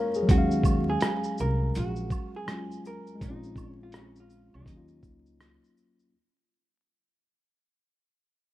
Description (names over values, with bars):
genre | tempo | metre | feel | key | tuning
lo-fi hip hop | 82 BPM | 4/4 | swing 62% on 16ths | Eb dorian | A4 = 438 Hz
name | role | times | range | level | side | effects
tine electric piano | accompaniment | 0.0-6.2 s | Gb3 to F5 | -30 LUFS | left 2 dB | cassette tape, low-pass filter
lo-fi sampler-style drum kit | drums | 0.1-6.1 s | hi-hat, kick drum, rim click, shaker | -26 LUFS | equal | none
vintage hollow-body jazz guitar | melody | 0.3-5.7 s | Db4 to Bb4 | -35 LUFS | right 5 dB | low-pass filter
upright bass | bass | 0.3-5.6 s | Bb1 to Eb2 | -30 LUFS | equal | none
maracas and woodblock | percussion | 0.3-6.0 s | none | -44 LUFS | right 6 dB | none
room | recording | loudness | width
light reverb, digital ambience | rough home demo mix, vinyl crackle | -24 LUFS | side -15 dB against mid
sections
0.0-6.1 A section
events
fade-out 0.0-6.1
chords
0.3 Ebm11; 3.2 Bbm9; 4.7 Ebm9